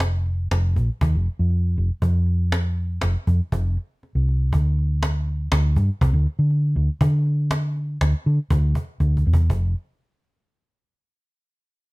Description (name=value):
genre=progressive instrumental, band music in an uneven meter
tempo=120 BPM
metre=5/4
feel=straight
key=unclear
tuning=A4 = 440 Hz
part: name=hollow-body short-scale fingered electric bass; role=bass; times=0.0-9.7 s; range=F1 to D3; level=-19 LUFS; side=equal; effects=none
part: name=cajon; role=drums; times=0.0-9.6 s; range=none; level=-26 LUFS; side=equal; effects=none
room=little or no reverb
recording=rough home demo mix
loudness=-19 LUFS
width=side -24 dB against mid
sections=0.0-9.5 A section; 9.5-11.9 B section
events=drum fill 9.0-9.5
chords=none